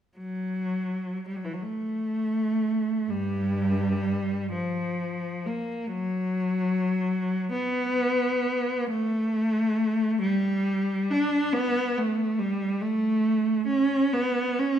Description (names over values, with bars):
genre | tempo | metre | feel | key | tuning
classical, free, expressive piece for unaccompanied cello | 36-47 BPM (dotted quarters) | 6/8 | rubato | unclear | A4 = 440 Hz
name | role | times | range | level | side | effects
rich cello | solo | 0.2-14.8 s | G2 to D4 | -24 LUFS | equal | none
room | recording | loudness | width
wet recital hall reverb, RT60 1.6 s | minimal, uncompressed stereo recording | -24 LUFS | side -9 dB against mid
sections
0.2-14.8 A section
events
none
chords
none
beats
| 0.18 1.64 | 3.10 4.53 | 5.92 7.51 | 8.90 10.21 | 11.53 12.82 | 14.13